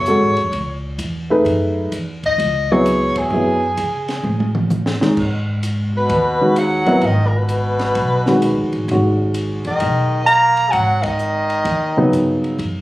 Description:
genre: modal jazz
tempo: 129 BPM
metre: 4/4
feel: swing 66% on 8ths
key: G# phrygian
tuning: A4 = 440 Hz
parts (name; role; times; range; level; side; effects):
- dark soprano saxophone; melody; 0.0-12.4 s; G#4 to A#5; -18 LUFS; equal; none
- dark baby grand piano; accompaniment; 0.0-12.6 s; C#3 to B4; -16 LUFS; equal; none
- upright bass; bass; 0.0-12.8 s; E#1 to C#3; -22 LUFS; equal; none
- compact cocktail drum kit; drums; 0.1-12.7 s; crash cymbal, hi-hat, kick drum, ride cymbal, snare drum, toms; -28 LUFS; equal; none
- trombone with straight mute; second line; 5.9-12.4 s; A#2 to A#3; -22 LUFS; left 1 dB; none
room: moderate studio reverb, RT60 0.8 s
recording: recorded on a phone in the room, club reverb, compression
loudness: -15 LUFS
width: side -17 dB against mid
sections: 0.0-12.8 A section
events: band accent 3.1, 11.0; drum fill 4.2-5.2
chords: 0.0 F#m9; 5.2 G#m7

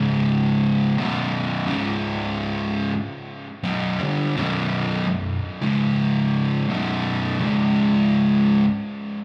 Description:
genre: metal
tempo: 84 BPM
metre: 4/4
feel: straight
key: unclear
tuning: A4 = 440 Hz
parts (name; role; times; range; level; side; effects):
- fuzz guitar; solo; 0.0-8.6 s; B1 to G3; -22 LUFS; equal; distortion, tape echo
room: light reverb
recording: live gig heard through the venue's PA, club reverb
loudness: -22 LUFS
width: mono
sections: 0.0-9.2 A section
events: none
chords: 0.0 C#5; 1.0 B5; 1.7 C#5; 3.6 Bm; 5.6 C#5; 6.7 B5; 7.4 C#5

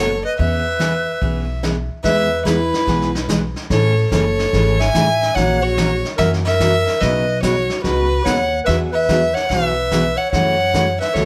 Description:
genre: country, western swing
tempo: 145 BPM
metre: 4/4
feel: swing 66% on 8ths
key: E major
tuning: A4 = 439 Hz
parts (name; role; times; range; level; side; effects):
- clear fiddle; melody; 0.0-11.3 s; B4 to G#5; -23 LUFS; equal; plate reverb
- mellow clarinet; second line; 0.0-11.3 s; E4 to E5; -23 LUFS; equal; none
- picked steel-string acoustic guitar; accompaniment; 0.0-11.3 s; B2 to B4; -24 LUFS; equal; none
- upright bass; bass; 0.0-11.3 s; F#1 to F#2; -24 LUFS; equal; none
- vintage brush drum kit; drums; 0.4-11.3 s; brushed snare drum, hi-hat, kick drum, snare drum; -28 LUFS; equal; none
room: moderate studio reverb, RT60 0.8 s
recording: none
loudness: -17 LUFS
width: mono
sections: 0.0-2.0 A section; 2.0-11.3 A section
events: none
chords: 0.4 E6; 2.0 E; 3.7 Amaj7; 5.4 F#7/A#; 7.0 Badd9; 8.7 Eadd9; 10.3 F#m7

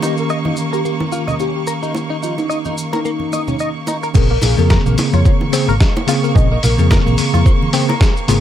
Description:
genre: nu-disco, nu disco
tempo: 109 BPM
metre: 4/4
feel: swing 56% on 16ths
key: Bb dorian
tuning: A4 = 440 Hz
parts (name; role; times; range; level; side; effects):
- soft octave-layered synth lead; melody; 0.0-6.9 s; Eb4 to Eb5; -25 LUFS; left 1 dB; chorus, phaser, tape echo
- bell-like tine electric piano; accompaniment; 0.0-8.4 s; Db3 to Ab4; -20 LUFS; left 1 dB; fast stereo tremolo, sidechain pumping, tape echo
- clear studio violin section; sustained chords; 0.0-8.4 s; Bb3 to Db6; -26 LUFS; right 3 dB; sidechain pumping
- direct-recorded clean electric guitar; riff; 0.0-8.3 s; F3 to Eb5; -24 LUFS; left 2 dB; analog chorus
- bongos, maracas and congas; percussion; 0.0-8.4 s; none; -24 LUFS; right 2 dB; none
- hollow-body short-scale fingered electric bass; bass; 4.2-8.4 s; Ab1 to F2; -15 LUFS; equal; tube saturation
- dusty soul sampler-style drum kit; drums; 4.2-8.4 s; crash cymbal, hi-hat, snare drum; -22 LUFS; left 1 dB; overdrive
- electronic kick drum; drums; 4.2-8.1 s; none; -13 LUFS; equal; overdrive
room: little or no reverb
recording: none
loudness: -13 LUFS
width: side -11 dB against mid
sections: 0.0-4.2 A section; 4.2-8.4 B section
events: drop 4.2-8.4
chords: 0.0 Eb7; 4.2 Bbm9

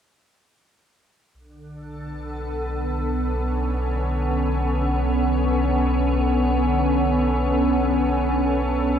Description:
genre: ambient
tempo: free time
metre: none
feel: none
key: B minor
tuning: A4 = 444 Hz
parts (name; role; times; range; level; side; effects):
- soft additive organ-like pad; sustained chords; 1.7-9.0 s; D3 to A4; -22 LUFS; equal; ensemble chorus, built-in reverb
- warm sub bass; bass; 1.3-9.0 s; B1; -25 LUFS; equal; none
room: wet cathedral reverb, RT60 7.5 s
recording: dark, warm production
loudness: -20 LUFS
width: side -8 dB against mid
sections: 1.4-9.0 A section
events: none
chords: 1.4 Bm9

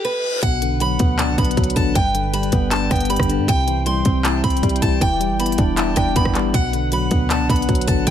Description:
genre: hip hop, trap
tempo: 157 BPM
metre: 4/4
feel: half-time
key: B phrygian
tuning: A4 = 440 Hz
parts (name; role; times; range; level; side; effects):
- picked steel-string acoustic guitar; melody; 0.0-8.1 s; B4 to C6; -23 LUFS; right 1 dB; ping-pong delay
- tine electric piano; accompaniment; 0.4-8.1 s; G2 to E4; -21 LUFS; left 2 dB; medium stereo tremolo
- bright brass ensemble; sustained chords; 0.4-8.1 s; D4 to G5; -30 LUFS; right 2 dB; none
- clean 808-style bass; bass; 0.4-8.1 s; E1 to G2; -23 LUFS; equal; none
- trap drum kit; drums; 0.4-8.1 s; handclaps, hi-hat, kick drum, rim click; -20 LUFS; equal; none
room: digital ambience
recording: none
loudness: -16 LUFS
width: side -10 dB against mid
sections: 0.4-8.1 A section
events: break 0.0-0.4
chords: 0.4 Bm; 2.0 G; 3.5 C; 5.0 Em7; 6.5 Bm

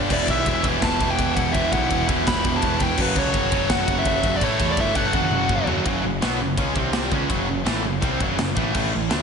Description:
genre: heavy metal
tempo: 167 BPM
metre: 4/4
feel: straight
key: F# phrygian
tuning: A4 = 440 Hz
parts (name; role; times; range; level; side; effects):
- distorted electric guitar; riff; 0.0-9.2 s; E2 to D4; -28 LUFS; equal; overdrive, slapback echo
- heavy high-gain guitar; riff; 0.0-9.2 s; E2 to D4; -26 LUFS; right 11 dB; distortion, slapback echo
- scooped high-gain guitar; riff; 0.0-9.2 s; F#2 to A4; -28 LUFS; left 11 dB; distortion, slapback echo
- growling picked electric bass; bass; 0.0-9.2 s; E1 to E2; -28 LUFS; equal; overdrive
- dark smooth lead guitar; melody; 0.1-5.7 s; B4 to B5; -25 LUFS; equal; overdrive, slapback echo, digital delay
- tight metal drum kit; drums; 0.1-9.2 s; crash cymbal, kick drum, ride cymbal, snare drum, toms; -25 LUFS; left 1 dB; none
room: moderate lush hall reverb, RT60 2.0 s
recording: big arena sound, nothing above 10.9 kHz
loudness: -19 LUFS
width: side -6 dB against mid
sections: 0.0-5.9 A section; 5.9-9.2 B section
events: half time 0.0-5.9; drum fill 5.1-5.9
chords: 0.1 Em; 3.0 F#m; 4.4 A5; 5.1 F#m; 5.9 F#5; 6.8 C5; 7.1 F#m

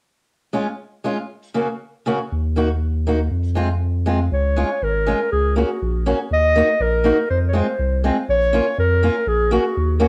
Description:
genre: alpine folk, alpine dance band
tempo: 121 BPM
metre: 2/4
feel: straight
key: Db major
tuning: A4 = 441 Hz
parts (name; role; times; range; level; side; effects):
- fingerpicked acoustic archtop guitar; accompaniment; 0.5-10.1 s; Db3 to Gb4; -23 LUFS; equal; cassette tape
- warm sub bass; bass; 2.3-10.1 s; Ab1 to F2; -22 LUFS; equal; none
- warm clarinet; melody; 4.3-10.0 s; Gb4 to Eb5; -22 LUFS; equal; tape echo
room: moderate studio reverb, RT60 0.7 s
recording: home recording on cassette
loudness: -20 LUFS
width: mono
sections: 0.3-4.3 A section; 4.3-10.1 B section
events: none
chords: 0.3 Db; 1.3 Gb/Db; 2.3 Ebm; 3.3 Fm; 4.3 Db6; 5.3 Gb/Db; 6.3 Ebm; 7.3 Fm; 8.3 Bbm; 9.3 Gb/Bb

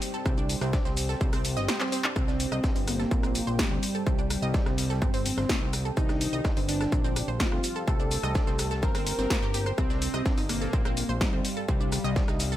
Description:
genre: melodic techno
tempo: 126 BPM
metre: 4/4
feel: straight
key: C dorian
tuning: A4 = 440 Hz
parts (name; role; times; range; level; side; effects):
- dark analog pad; sustained chords; 0.0-12.6 s; G3 to G5; -39 LUFS; equal; chorus, vintage 12-bit sampler grit, sidechain pumping
- crunchy breakbeat drum kit; drums; 0.0-12.6 s; hi-hat, shaker, snare drum; -47 LUFS; equal; none
- punchy analog drum machine; drums; 0.0-12.6 s; handclaps, hi-hat, rim click, shaker, snare drum; -32 LUFS; left 1 dB; overdrive, sidechain pumping on perc, sidechain pumping on hats
- wide unison pluck; arpeggios; 0.1-12.6 s; Bb3 to Eb6; -35 LUFS; right 1 dB; sidechain pumping, ping-pong delay
- fat analog bass; bass; 0.3-12.6 s; G1 to D2; -31 LUFS; equal; sidechain pumping
- electronic kick drum; drums; 0.3-12.3 s; none; -28 LUFS; equal; distortion, overdrive
- wide unison lead; melody; 2.2-12.5 s; G3 to Bb4; -32 LUFS; equal; sidechain pumping, ping-pong delay
room: studio reverb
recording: none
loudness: -25 LUFS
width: side -13 dB against mid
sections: 0.0-12.6 A section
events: drum fill 1.8-2.2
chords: 0.0 Cm

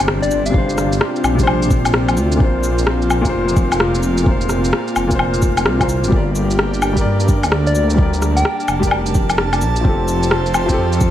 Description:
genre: future garage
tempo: 129 BPM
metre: 4/4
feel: swing 64% on 16ths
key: G minor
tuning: A4 = 439 Hz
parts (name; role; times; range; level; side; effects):
- felt-muted upright piano; accompaniment; 0.0-11.1 s; Bb2 to D5; -21 LUFS; left 2 dB; sidechain pumping, digital delay
- airy breathy pad; sustained chords; 0.0-11.1 s; F3 to A5; -22 LUFS; equal; chorus, sidechain pumping
- swelling detuned saw bass; bass; 0.0-11.1 s; F1 to G2; -19 LUFS; equal; sidechain pumping
- electronic shaker, woodblock, rim click and cabasa; drums; 0.0-11.1 s; none; -20 LUFS; left 1 dB; overdrive, studio reverb
- sub drop; sound effects; 0.0-0.5 s; none; barely audible; none; none
- soft struck synth lead; melody; 0.2-0.9, 7.7-8.7 s; D5 to G5; -23 LUFS; left 3 dB; chorus, digital delay
- electronic kick drum; drums; 0.5-11.1 s; none; -17 LUFS; equal; overdrive, studio reverb
room: light reverb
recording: bright 1980s-style digital production, vinyl crackle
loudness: -14 LUFS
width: side -12 dB against mid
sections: 0.0-11.1 A section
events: impact 0.0-0.5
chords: 0.0 Csus2; 2.4 Bbsus2; 6.1 Gm; 9.8 Fadd9

